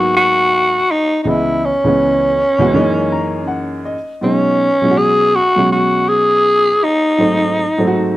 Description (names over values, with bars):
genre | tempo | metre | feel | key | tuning
hip hop | 81 BPM | 4/4 | swing 61% on 16ths | unclear | A4 = 440 Hz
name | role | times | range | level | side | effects
growling tenor saxophone | melody | 0.0-8.2 s | C#4 to G#4 | -13 LUFS | equal | none
dark baby grand piano | accompaniment | 0.0-8.2 s | C#2 to A#5 | -17 LUFS | equal | none
room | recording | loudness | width
light reverb, small room ambience | faint mains hum | -12 LUFS | side -16 dB against mid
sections
0.0-8.2 A section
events
grand piano fill 2.7-4.2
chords
0.0 G#m9; 1.3 C#m9; 2.7 F#13; 4.2 B69; 7.2 G#7b9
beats
0.52 | 1.26 2.01 2.75 3.49 | 4.23 4.97 5.71 6.45 | 7.19 7.93